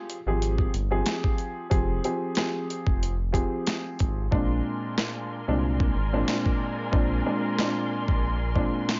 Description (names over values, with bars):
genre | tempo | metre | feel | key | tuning
hip hop, boom-bap hip-hop | 92 BPM | 4/4 | swing 55% on 16ths | F dorian | A4 = 440 Hz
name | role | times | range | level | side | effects
dark upright piano | accompaniment | 0.0-9.0 s | Bb2 to Ab4 | -31 LUFS | equal | cassette tape, high-pass filter, low-pass filter
dusty soul sampler-style drum kit | drums | 0.1-9.0 s | hi-hat, kick drum, snare drum | -29 LUFS | equal | overdrive
smooth synth bass | bass | 0.3-8.7 s | F1 to C2 | -30 LUFS | equal | none
warm studio string section | sustained chords | 4.3-9.0 s | Bb4 to C6 | -36 LUFS | equal | high-pass filter, low-pass filter
room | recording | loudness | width
little or no reverb | nothing above 7.5 kHz | -27 LUFS | mono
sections
0.0-9.0 A section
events
hi-hats muted 4.3-9.0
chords
0.0 Fmadd9; 4.3 Bb9